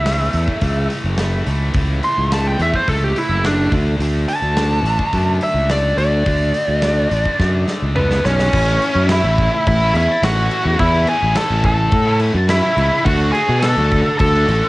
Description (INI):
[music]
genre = quiet-loud alternative rock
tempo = 106 BPM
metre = 4/4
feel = straight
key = A major from 8.5 s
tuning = A4 = 440 Hz
[part]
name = biting lead guitar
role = melody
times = 0.0-14.7 s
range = B3 to C6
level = -18 LUFS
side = equal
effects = overdrive, cassette tape
[part]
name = high-gain distorted guitar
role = riff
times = 0.0-14.7 s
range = A2 to F#4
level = -25 LUFS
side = left 1 dB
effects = distortion, cassette tape
[part]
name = fuzz fingered electric bass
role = bass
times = 0.0-14.6 s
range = F#1 to B2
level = -17 LUFS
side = equal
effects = overdrive
[part]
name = big rock drum kit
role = drums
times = 0.1-14.6 s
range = crash cymbal, hi-hat, kick drum, snare drum, toms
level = -23 LUFS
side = equal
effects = cassette tape
[sound]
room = studio reverb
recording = home recording on cassette, nothing above 10.4 kHz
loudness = -14 LUFS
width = side -20 dB against mid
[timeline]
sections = 0.0-8.5 A section; 8.5-14.7 B section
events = lead electric guitar solo 0.0-8.5; drum fill 7.4-8.5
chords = 0.0 A; 3.7 D5; 8.5 A; 13.1 D